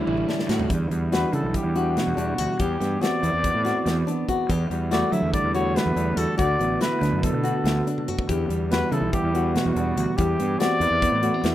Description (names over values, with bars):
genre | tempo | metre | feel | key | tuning
math rock and midwest emo | 285 BPM (eighths) | 9/8 | straight | unclear | A4 = 440 Hz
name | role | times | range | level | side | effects
mellow electric guitar | accompaniment | 0.0-11.5 s | D2 to F#4 | -27 LUFS | right 5 dB | vibrato effect
nylon-string guitar | arpeggios | 0.0-11.5 s | D4 to G4 | -28 LUFS | left 6 dB | tape echo
overdriven electric guitar | riff | 0.0-0.7 s | A2 to E4 | -34 LUFS | left 1 dB | none
fuzz fingered electric bass | bass | 0.0-11.5 s | A1 to F#3 | -26 LUFS | equal | overdrive
modern studio drum kit | drums | 0.1-11.5 s | hi-hat, kick drum, snare drum, toms | -28 LUFS | equal | none
warm trumpet | melody | 1.1-11.5 s | F#4 to E5 | -27 LUFS | left 1 dB | none
room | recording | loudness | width
little or no reverb | rough home demo mix | -21 LUFS | side -13 dB against mid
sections
0.7-11.5 A section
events
drum fill 0.1-0.7, 8.0-8.3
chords
0.0 A7sus4; 0.7 Em9; 2.6 Cmaj9/E; 4.5 A7sus4/E; 6.4 D6; 8.3 Em9; 10.2 Cmaj9/E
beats
0.07 0.28 0.49 | 0.70 0.91 1.12 1.33 1.54 1.75 1.96 2.17 2.38 | 2.59 2.81 3.02 3.23 3.44 3.65 3.86 4.07 4.28 | 4.49 4.70 4.91 5.12 5.33 5.55 5.76 5.97 6.18 | 6.39 6.60 6.81 7.02 7.23 7.44 7.65 7.86 8.07 | 8.28 8.49 8.71 8.92 9.13 9.34 9.55 9.76 9.97 | 10.18 10.39 10.60 10.81 11.02 11.23 11.44